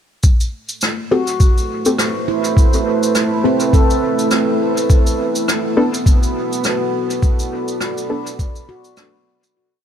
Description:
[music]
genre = ambient dub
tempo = 103 BPM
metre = 4/4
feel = swing 56% on 16ths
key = A dorian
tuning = A4 = 440 Hz
[part]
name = deep dark ambient pad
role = sustained chords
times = 1.4-9.6 s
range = A3 to B5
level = -20 LUFS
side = right 1 dB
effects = chorus, built-in reverb
[part]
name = cabasa and rim click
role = drums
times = 0.2-9.5 s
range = none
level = -23 LUFS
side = equal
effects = dub echo
[part]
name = electronic kick drum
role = drums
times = 0.2-8.5 s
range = none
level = -12 LUFS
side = equal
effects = overdrive
[part]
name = handpan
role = arpeggios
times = 1.1-9.8 s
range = C4 to A4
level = -22 LUFS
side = right 3 dB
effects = dub echo
[part]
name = filtered dub chord stab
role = stabs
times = 1.1-8.3 s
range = B3 to A4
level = -21 LUFS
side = left 2 dB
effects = chorus, dub echo
[sound]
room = light reverb, small room ambience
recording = none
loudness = -14 LUFS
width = side -9 dB against mid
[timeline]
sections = 0.2-9.6 groove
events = fade-out 6.5-9.6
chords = 0.2 Am7; 4.9 Bm7

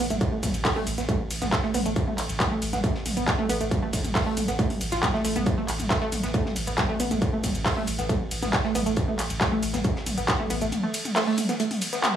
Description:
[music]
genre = driving peak-time techno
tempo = 137 BPM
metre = 4/4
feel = straight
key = unclear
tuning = A4 = 439 Hz
[part]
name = analog pluck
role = riff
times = 0.0-12.0 s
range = A3 to F4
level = -28 LUFS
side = right 2 dB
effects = chorus, phaser, sidechain pumping, tape echo
[part]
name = saturated sub bass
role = bass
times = 0.0-10.7 s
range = A1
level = -33 LUFS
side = equal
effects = tube saturation, sidechain pumping, low-pass filter
[part]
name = techno drum kit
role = drums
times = 0.1-12.1 s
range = handclaps, hi-hat, ride cymbal, shaker, toms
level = -28 LUFS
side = equal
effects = sidechain pumping on hats, sidechain pumping on toms, sidechain pumping on perc, sidechain pumping on cymbals
[part]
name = electronic kick drum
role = drums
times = 0.2-10.4 s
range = none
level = -28 LUFS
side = equal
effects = distortion
[part]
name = tight funk drum kit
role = drums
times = 0.2-12.1 s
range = hi-hat, snare drum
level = -38 LUFS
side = left 2 dB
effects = sidechain pumping on hats, high-pass filter on hats, high-pass filter on snare, high-pass filter on room
[sound]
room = light reverb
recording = dry, gritty hardware recording, studio ambience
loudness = -23 LUFS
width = side -10 dB against mid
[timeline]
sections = 0.0-12.2 A section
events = none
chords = none

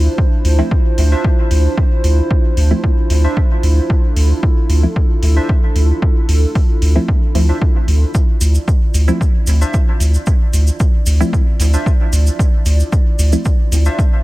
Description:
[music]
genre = dub techno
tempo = 113 BPM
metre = 4/4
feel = straight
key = D minor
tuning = A4 = 444 Hz
[part]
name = dark analog pad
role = sustained chords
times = 0.0-14.2 s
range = D4 to D5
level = -24 LUFS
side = right 1 dB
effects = chorus, sidechain pumping
[part]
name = round analog bass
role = bass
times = 0.0-13.9 s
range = D2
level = -12 LUFS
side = equal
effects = sidechain pumping
[part]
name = electronic kick drum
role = drums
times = 0.2-14.1 s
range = none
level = -14 LUFS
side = equal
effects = overdrive
[part]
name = electronic hi-hat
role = drums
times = 0.4-13.8 s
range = none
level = -29 LUFS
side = right 1 dB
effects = overdrive
[part]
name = filtered dub chord stab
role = stabs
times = 0.6-13.4 s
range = F3 to E4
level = -24 LUFS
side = equal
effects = chorus, phaser, sidechain pumping, dub echo
[part]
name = warbly lo-fi synth keys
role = riff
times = 1.1-14.0 s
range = D4 to E5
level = -28 LUFS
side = equal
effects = chorus, sidechain pumping, dub echo
[part]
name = cabasa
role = percussion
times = 8.1-14.1 s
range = none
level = -26 LUFS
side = right 2 dB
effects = none
[sound]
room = little or no reverb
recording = none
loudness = -12 LUFS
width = side -18 dB against mid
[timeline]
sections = 0.0-14.2 A section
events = none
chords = 0.0 Dm9

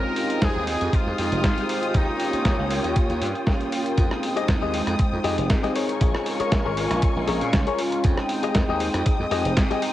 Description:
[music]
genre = nu-disco, nu disco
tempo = 118 BPM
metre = 4/4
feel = swing 54% on 16ths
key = F minor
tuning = A4 = 440 Hz
[part]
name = brilliant trumpet section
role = melody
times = 0.0-3.0 s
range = Eb4 to Bb4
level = -30 LUFS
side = left 2 dB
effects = cassette tape, tape echo
[part]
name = warm analog pad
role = accompaniment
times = 0.0-9.9 s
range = Ab3 to G5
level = -27 LUFS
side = right 1 dB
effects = chorus, sidechain pumping, cassette tape, tape echo
[part]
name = dark symphonic string section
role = sustained chords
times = 0.0-9.9 s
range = Ab3 to Eb6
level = -30 LUFS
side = equal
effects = sidechain pumping, cassette tape
[part]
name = slap bass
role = bass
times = 0.0-9.7 s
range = F1 to Bb2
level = -28 LUFS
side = equal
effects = sidechain pumping
[part]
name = dusty soul sampler-style drum kit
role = drums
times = 0.2-9.9 s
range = hi-hat, rim click, snare drum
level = -29 LUFS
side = equal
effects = cassette tape
[part]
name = electronic kick drum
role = drums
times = 0.4-9.7 s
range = none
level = -22 LUFS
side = equal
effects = cassette tape
[part]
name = direct-recorded clean electric guitar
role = riff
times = 4.4-9.8 s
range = G4 to Eb5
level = -28 LUFS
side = left 7 dB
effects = wide subtle chorus, cassette tape, tape echo
[sound]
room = light reverb, digital ambience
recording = home recording on cassette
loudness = -20 LUFS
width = side -14 dB against mid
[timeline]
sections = 0.0-9.9 A section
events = none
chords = 0.0 Fm9; 1.9 Eb9; 4.0 Fm9; 5.8 Bbm7; 8.0 Fm9

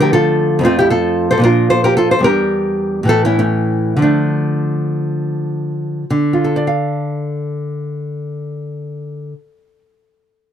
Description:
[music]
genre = classical, baroque-style dance for nylon-string guitar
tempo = 56-77 BPM (dotted quarters)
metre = 6/8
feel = rubato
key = D minor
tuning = A4 = 441 Hz
[part]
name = nylon-string guitar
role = solo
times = 0.0-9.9 s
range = E2 to F5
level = -14 LUFS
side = equal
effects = none
[sound]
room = little or no reverb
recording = dry, close 1970s-style studio recording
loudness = -14 LUFS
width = side -9 dB against mid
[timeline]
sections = 0.0-6.1 A section; 6.1-10.3 B section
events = slowing down 1.4-6.1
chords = 0.0 Dm; 0.7 F; 1.4 Bb; 2.3 Em7b5; 3.1 A; 4.0 Dm

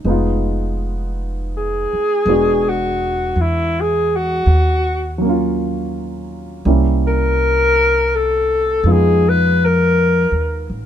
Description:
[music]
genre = jazz ballad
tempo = 55 BPM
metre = 4/4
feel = swing 69% on 8ths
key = unclear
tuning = A4 = 440 Hz
[part]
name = dark baby grand piano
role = accompaniment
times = 0.0-10.9 s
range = Gb3 to F#4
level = -22 LUFS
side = right 1 dB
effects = none
[part]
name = upright bass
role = bass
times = 0.0-10.9 s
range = E1 to F2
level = -18 LUFS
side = equal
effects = none
[part]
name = breathy alto saxophone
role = melody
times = 1.6-10.7 s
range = E4 to Cb5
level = -16 LUFS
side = left 2 dB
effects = none
[sound]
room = light reverb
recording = minimal, uncompressed stereo recording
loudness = -14 LUFS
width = side -10 dB against mid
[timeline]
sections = 0.0-10.9 A section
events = alto saxophone solo 0.0-10.9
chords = 0.1 Fm7b5; 2.3 E9; 4.5 Ebm9; 6.6 C7b9; 8.8 Fm7b5

